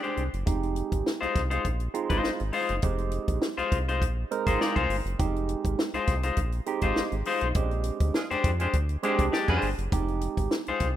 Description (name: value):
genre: funk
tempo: 102 BPM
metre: 4/4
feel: straight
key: F dorian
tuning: A4 = 439 Hz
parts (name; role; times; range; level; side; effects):
- clean electric guitar; accompaniment; 0.0-10.9 s; Ab3 to D5; -29 LUFS; left 4 dB; none
- compact cocktail drum kit; drums; 0.0-11.0 s; hi-hat, kick drum, snare drum; -30 LUFS; equal; none
- round analog bass; bass; 0.2-11.0 s; F1 to F2; -29 LUFS; equal; none
- barky tine electric piano; stabs; 0.5-10.5 s; G3 to Bb4; -32 LUFS; right 7 dB; overdrive, phaser, tape echo
- clear horn section; second line; 8.1-9.7 s; Ab3 to Ab4; -36 LUFS; right 5 dB; none
room: light reverb, studio reverb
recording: rough home demo mix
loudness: -25 LUFS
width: side -12 dB against mid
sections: 0.5-11.0 A section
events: band accent 7.6-9.9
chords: 0.5 Fm7; 7.6 Bb13; 9.9 Fm7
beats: | 0.47 1.06 1.65 2.24 | 2.83 3.42 4.01 4.60 | 5.19 5.79 6.38 6.97 | 7.56 8.15 8.74 9.33 | 9.92 10.51